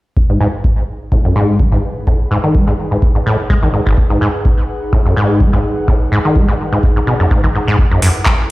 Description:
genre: acid house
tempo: 126 BPM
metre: 4/4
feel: swing 54% on 16ths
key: G# phrygian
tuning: A4 = 440 Hz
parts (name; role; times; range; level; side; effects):
- electronic kick drum; drums; 0.2-8.4 s; none; -14 LUFS; equal; none
- airy breathy pad; texture; 0.9-8.5 s; D#4 to F#5; -24 LUFS; equal; chorus, sidechain pumping
- acid bass, saw; riff; 0.3-8.1 s; G#1 to G#3; -14 LUFS; equal; overdrive, analog chorus, digital delay
- booming analog drum machine; drums; 8.0-8.4 s; handclaps, hi-hat; -16 LUFS; equal; none
room: light reverb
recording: played on a big sound system in a bare room, stone room reverb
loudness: -11 LUFS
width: side -19 dB against mid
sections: 0.2-8.5 A section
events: fade-in on analog synth pad 0.2-8.5; filter sweep on acid bass 0.2-8.5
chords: 0.2 G#m7; 7.8 F#m7

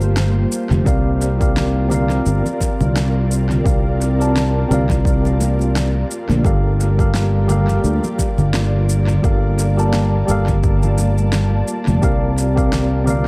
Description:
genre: sunset chillout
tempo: 86 BPM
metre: 4/4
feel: swing 56% on 16ths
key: G minor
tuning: A4 = 439 Hz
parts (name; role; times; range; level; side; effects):
- tine electric piano; accompaniment; 0.0-13.3 s; G3 to A5; -25 LUFS; equal; analog delay
- ethereal airy pad; sustained chords; 0.0-13.3 s; Bb3 to A5; -28 LUFS; equal; ensemble chorus, built-in reverb
- sustaining fretless electric bass; bass; 0.0-13.3 s; F1 to D2; -19 LUFS; equal; lush chorus
- electronic shaker, snare drum and congas; drums; 0.0-13.2 s; none; -26 LUFS; equal; overdrive, analog delay
- congas; percussion; 0.0-13.2 s; none; -32 LUFS; equal; none
- electronic kick drum; drums; 0.9-12.7 s; none; -21 LUFS; equal; overdrive
room: light reverb, digital ambience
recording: echo-heavy mix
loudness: -17 LUFS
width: mono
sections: 0.0-13.3 A section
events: none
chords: 0.0 Gm7; 0.9 C9sus4; 6.4 Gm7; 12.0 C9sus4

